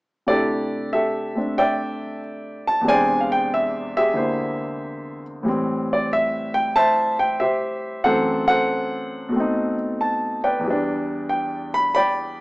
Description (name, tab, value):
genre	solo jazz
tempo	93 BPM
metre	4/4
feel	swing 67% on 8ths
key	C major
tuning	A4 = 438 Hz
part	warm baby grand piano	solo	0.3-12.4 s	E2 to B5	-19 LUFS	equal	none
room	light reverb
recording	small speaker sound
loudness	-19 LUFS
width	side -23 dB against mid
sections	0.3-12.4 A section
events	none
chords	0.3 C69; 2.9 E7alt; 5.5 Am7; 8.0 F#m7b5; 9.3 B7b9; 10.6 Em7